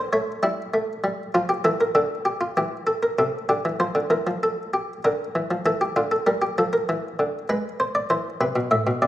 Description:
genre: classical, baroque-style two-part invention for harpsichord.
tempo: 98 BPM.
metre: 4/4.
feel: straight.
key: unclear.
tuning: A4 = 440 Hz.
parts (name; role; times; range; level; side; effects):
buff-stop harpsichord; solo; 0.0-9.1 s; A2 to E5; -21 LUFS; equal; none.
room: wet recital hall reverb, RT60 1.8 s.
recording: minimal, uncompressed stereo recording.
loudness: -21 LUFS.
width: side -14 dB against mid.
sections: 0.0-2.6 A section; 2.6-9.1 B section.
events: none.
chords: 0.1 A7; 1.3 Dm; 2.6 C7/E; 3.8 F; 5.0 Bbmaj7/D; 7.5 E/G#.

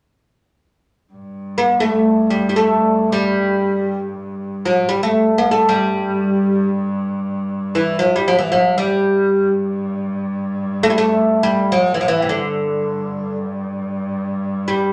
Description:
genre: Arabic maqam ensemble.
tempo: free time.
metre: none.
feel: none.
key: G maqam rast.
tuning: A4 = 440 Hz.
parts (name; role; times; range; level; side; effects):
clear double bass; drone; 1.1-14.9 s; G2; -26 LUFS; equal; none.
oud; melody; 1.6-14.9 s; C3 to Bb3+50c; -18 LUFS; equal; none.
room: wet studio reverb, RT60 0.6 s.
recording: none.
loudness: -18 LUFS.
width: mono.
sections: 1.1-14.9 A section.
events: none.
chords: none.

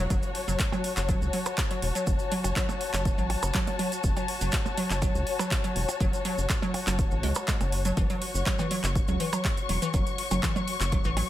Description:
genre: minimal techno.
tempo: 122 BPM.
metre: 4/4.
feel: straight.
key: F# minor.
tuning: A4 = 439 Hz.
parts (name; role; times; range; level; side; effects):
hollow square pluck; riff; 0.0-11.2 s; E3 to G#3; -33 LUFS; right 2 dB; chorus, sidechain pumping, dub echo.
rubbery square bass; bass; 0.0-11.2 s; E1 to C#2; -29 LUFS; equal; sidechain pumping.
muted studio string section; texture; 0.0-11.3 s; F#4 to C#6; -32 LUFS; left 4 dB; sidechain pumping.
electronic kick drum; drums; 0.1-11.0 s; none; -29 LUFS; equal; studio reverb.
techno drum kit; drums; 0.1-11.3 s; handclaps, hi-hat; -33 LUFS; equal; studio reverb.
maracas; percussion; 0.1-11.1 s; none; -38 LUFS; right 4 dB; none.
percussion blips; percussion; 0.7-11.3 s; none; -36 LUFS; right 4 dB; overdrive, studio reverb, dub echo.
room: light reverb, digital ambience.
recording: none.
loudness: -25 LUFS.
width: side -13 dB against mid.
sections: 0.0-11.3 A section.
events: none.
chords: 0.0 F#m.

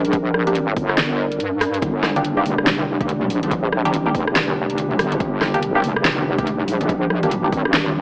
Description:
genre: deep dubstep.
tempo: 142 BPM.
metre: 4/4.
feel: swing 60% on 16ths, half-time.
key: G minor.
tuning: A4 = 440 Hz.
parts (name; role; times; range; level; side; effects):
dark analog pad; sustained chords; 0.0-8.0 s; G3 to Bb4; -25 LUFS; equal; lush chorus.
wobble bass; bass; 0.0-8.0 s; F1 to G2; -21 LUFS; equal; chorus.
deep house drum kit; drums; 0.0-7.8 s; hi-hat, rim click, snare drum; -21 LUFS; equal; overdrive.
electronic kick drum; drums; 0.1-7.6 s; none; -26 LUFS; equal; overdrive.
filtered dub chord stab; stabs; 0.5-7.5 s; Bb3 to G4; -24 LUFS; equal; phaser, lush chorus, dub echo.
bongos and congas; percussion; 1.8-7.9 s; none; -26 LUFS; equal; dub echo.
room: light reverb, digital ambience.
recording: dry, gritty hardware recording, cassette tape, AM radio sound.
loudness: -17 LUFS.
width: side -33 dB against mid.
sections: 0.0-8.0 A section.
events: kick drops out 1.4-1.8.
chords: 0.0 Gm.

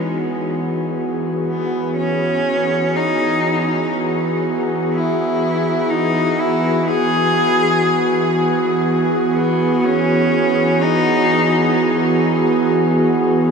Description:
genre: ambient.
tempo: free time.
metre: none.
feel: none.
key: E major.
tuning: A4 = 440 Hz.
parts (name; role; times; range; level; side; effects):
rich cello; melody; 0.0-11.8 s; G#3 to G#4; -20 LUFS; left 1 dB; diffuse ambient delay.
airy breathy pad; sustained chords; 0.0-13.5 s; E3 to G#4; -16 LUFS; right 1 dB; chorus.
room: wet huge ambient reverb, RT60 7.9 s.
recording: none.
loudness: -15 LUFS.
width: side -5 dB against mid.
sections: 0.0-12.8 A section.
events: none.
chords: 0.0 E.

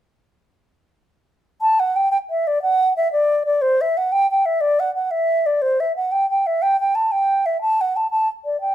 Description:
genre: celtic folk.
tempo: 120 BPM (dotted quarters).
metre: 6/8.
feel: straight.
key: unclear.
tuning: A4 = 440 Hz.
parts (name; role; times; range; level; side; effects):
baroque flute; solo; 1.6-8.7 s; C5 to A5; -17 LUFS; equal; none.
room: moderate studio reverb, RT60 0.6 s.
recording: none.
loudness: -17 LUFS.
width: side -12 dB against mid.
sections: 1.6-8.7 A section.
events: none.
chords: none.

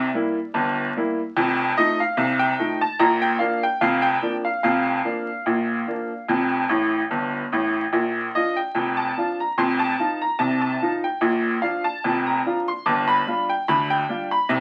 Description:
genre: ragtime piano.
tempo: 73 BPM.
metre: 2/4.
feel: swing 54% on 16ths.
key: Bb major.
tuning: A4 = 440 Hz.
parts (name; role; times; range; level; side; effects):
clear upright piano; solo; 0.0-14.6 s; F1 to D6; -22 LUFS; equal; none.
room: moderate studio reverb, RT60 0.5 s.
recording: very old 78 rpm record, vinyl crackle.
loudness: -22 LUFS.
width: mono.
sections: 0.0-14.6 A section.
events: upright piano fill 6.7-7.9.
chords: 0.0 C7 (rootless); 1.4 F7; 3.0 Bb/F; 6.3 F; 7.9 Bb; 9.6 F5; 11.2 Bb; 12.9 G5.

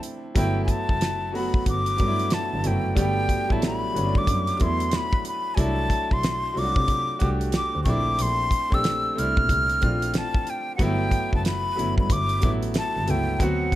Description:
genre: R&B, neo-soul.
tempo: 92 BPM.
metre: 4/4.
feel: swing 62% on 16ths.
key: G major.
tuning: A4 = 441 Hz.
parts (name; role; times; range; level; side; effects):
clear concert grand piano; accompaniment; 0.0-13.8 s; F#3 to G4; -28 LUFS; right 1 dB; none.
damped 70s drum kit; drums; 0.0-13.8 s; hi-hat, kick drum, snare drum; -25 LUFS; equal; none.
breathy concert flute; melody; 0.4-13.8 s; F#5 to F6; -26 LUFS; left 1 dB; slapback echo.
rich double bass; bass; 0.4-13.7 s; F#1 to C3; -27 LUFS; equal; none.
room: light reverb, studio reverb.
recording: none.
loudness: -21 LUFS.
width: side -14 dB against mid.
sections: 0.0-13.8 A section.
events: none.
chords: 0.4 G6; 5.6 C69; 7.9 Bbmaj9; 10.8 G6.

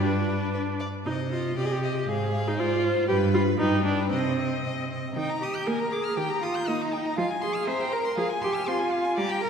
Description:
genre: quick classical-period movement for string quartet.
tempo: 119 BPM.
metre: 2/4.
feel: straight.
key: C minor, Eb major from 5.2 s.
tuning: A4 = 440 Hz.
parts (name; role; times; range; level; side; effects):
rich violin; melody; 0.0-9.5 s; G4 to Bb5; -36 LUFS; left 6 dB; none.
clear violin; second line; 0.0-9.5 s; B4 to G6; -33 LUFS; left 4 dB; none.
rich viola; accompaniment; 0.0-9.5 s; Eb3 to Ab4; -29 LUFS; right 1 dB; none.
rich cello; bass; 0.0-9.5 s; G2 to C5; -27 LUFS; right 1 dB; none.
room: wet concert hall reverb, RT60 2.1 s.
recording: heard from further back in the room.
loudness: -24 LUFS.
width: side -7 dB against mid.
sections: 0.0-5.2 A section; 5.2-9.5 B section.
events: none.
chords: 0.0 G; 1.1 Cm; 2.1 Fm/Ab; 2.6 Dm7b5/Ab; 3.1 G; 4.1 Cm; 5.2 Eb; 5.7 Bb7; 6.2 Eb; 7.2 Fm; 7.7 C7; 8.2 Fm.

